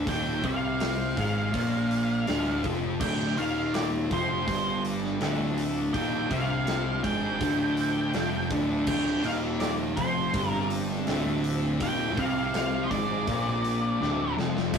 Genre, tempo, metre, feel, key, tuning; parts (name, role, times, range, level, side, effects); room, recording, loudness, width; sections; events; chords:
stoner and doom metal; 82 BPM; 4/4; straight; D phrygian; A4 = 440 Hz
thick fuzz guitar; riff; 0.0-14.8 s; D2 to C4; -29 LUFS; left 2 dB; distortion
thick fuzz guitar; riff; 0.0-14.7 s; D2 to C4; -35 LUFS; right 5 dB; distortion
fuzz picked electric bass; bass; 0.0-14.8 s; D1 to C2; -34 LUFS; right 1 dB; overdrive
octave-fuzz lead guitar; melody; 0.1-14.3 s; C5 to G5; -31 LUFS; right 2 dB; distortion
big rock drum kit; drums; 0.1-14.8 s; crash cymbal, hi-hat, kick drum, snare drum; -33 LUFS; equal
organ-like drone; sustained chords; 4.4-14.8 s; F3 to D4; -38 LUFS; right 1 dB
moderate small room reverb, RT60 0.5 s; rough rehearsal-room recording, tube saturation; -25 LUFS; side -6 dB against mid
0.0-14.7 A section
drum fill 14.0-14.7
0.0 Dm